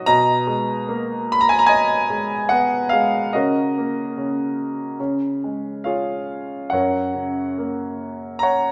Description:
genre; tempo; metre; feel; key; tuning
classical, lyrical solo piano; 68-75 BPM; 4/4; rubato; F# major; A4 = 440 Hz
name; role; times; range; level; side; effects
clear concert grand piano; solo; 0.0-8.7 s; F#2 to B5; -21 LUFS; equal; none
room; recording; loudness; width
wet recital hall reverb, RT60 1.5 s; recorded in a church or concert hall; -21 LUFS; mono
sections
0.0-8.7 A section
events
none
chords
0.0 G#madd9/B; 3.3 F#/C#; 5.0 C#; 6.7 F#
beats
| 0.04 0.87 1.69 2.50 | 3.33 4.15 4.98 5.85 | 6.72 7.58 8.43

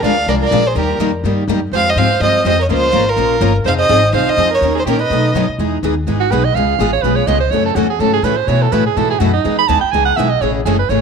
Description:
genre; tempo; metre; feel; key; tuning
acoustic string swing (jazz manouche); 249 BPM; 4/4; swing 56% on 8ths; E major from 5.6 s; A4 = 440 Hz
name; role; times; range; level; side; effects
warm violin; melody; 0.0-5.5 s; Bb4 to F5; -15 LUFS; right 1 dB; none
clear soprano saxophone; second line; 0.0-11.0 s; D#4 to B5; -18 LUFS; right 10 dB; none
picked steel-string acoustic guitar; accompaniment; 0.0-11.0 s; B2 to Bb4; -19 LUFS; left 15 dB; none
picked steel-string acoustic guitar; accompaniment; 0.0-11.0 s; B2 to B4; -21 LUFS; right 11 dB; none
upright bass; bass; 0.0-11.0 s; F1 to B2; -19 LUFS; left 2 dB; none
room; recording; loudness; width
moderate spring reverb, RT60 2.1 s; 1960s-style stereo with parts hard left and right; -12 LUFS; side -6 dB against mid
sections
0.0-5.6 A section; 5.6-11.0 B section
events
soprano saxophone solo 5.6-11.0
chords
0.0 Bb7; 0.8 Eb; 1.7 Fmadd9; 2.7 Bbm; 3.7 Fm7; 4.6 Eb7; 5.1 B7; 5.6 Emaj7; 6.5 C#7; 7.5 F#m7; 8.5 B7sus4; 9.4 Emaj7; 10.4 Amaj7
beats
0.04 0.28 0.52 | 0.76 1.00 1.24 1.48 | 1.73 1.97 2.21 2.45 | 2.69 2.93 3.17 3.41 | 3.65 3.90 4.14 4.38 | 4.62 4.86 5.10 5.34 | 5.58 5.83 6.07 6.31 | 6.55 6.79 7.03 7.27 | 7.51 7.76 8.00 8.24 | 8.48 8.72 8.96 9.20 | 9.45 9.69 9.93 10.17 | 10.41 10.65 10.89

